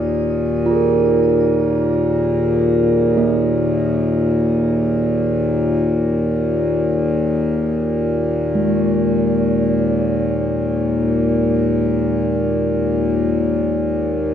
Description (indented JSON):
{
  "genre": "world meditative, free-time meditation music",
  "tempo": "free time",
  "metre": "none",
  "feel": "none",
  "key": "unclear",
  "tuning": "A4 = 439 Hz",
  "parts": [
    { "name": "pedal harmonium", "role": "drone", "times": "0.0-14.3 s", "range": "Eb2 to Bb2", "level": "-17 LUFS", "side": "left 1 dB", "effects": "none" },
    { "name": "bronze singing bowl", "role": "texture", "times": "0.0-14.3 s", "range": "Ab3 to Bb4", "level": "-21 LUFS", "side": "right 2 dB", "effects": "shimmer reverb" }
  ],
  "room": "wet scoring stage reverb, RT60 1.6 s",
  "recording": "dark, warm production",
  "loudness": "-15 LUFS",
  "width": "side -9 dB against mid",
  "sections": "0.0-14.3 A section",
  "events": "none",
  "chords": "none"
}